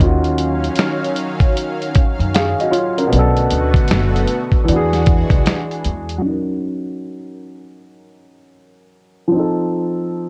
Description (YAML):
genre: lo-fi hip hop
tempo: 77 BPM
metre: 4/4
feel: swing 61% on 16ths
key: unclear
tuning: A4 = 439 Hz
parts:
  - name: dark upright piano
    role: accompaniment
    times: 0.0-10.3 s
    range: B2 to E#5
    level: -22 LUFS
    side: equal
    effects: low-pass filter
  - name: lush unison pad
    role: sustained chords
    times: 0.1-6.2 s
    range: D3 to E#5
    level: -26 LUFS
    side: equal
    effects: chorus, phaser
  - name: upright bass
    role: bass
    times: 0.0-6.2 s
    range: F#1 to F#2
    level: -21 LUFS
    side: equal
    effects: none
  - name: dusty soul sampler-style drum kit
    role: drums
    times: 0.0-6.2 s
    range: hi-hat, kick drum, snare drum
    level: -18 LUFS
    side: equal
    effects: none
room: light reverb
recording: cassette tape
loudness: -17 LUFS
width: mono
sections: 0.0-6.2 A section; 6.2-10.3 B section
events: none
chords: 0.0 D#m9; 3.1 Bm7; 4.7 E9; 6.2 F#6; 9.3 F7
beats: 0.77 1.55 2.33 | 3.11 3.89 4.67 5.45 | 6.22 7.00 7.78 8.56 | 9.34 10.12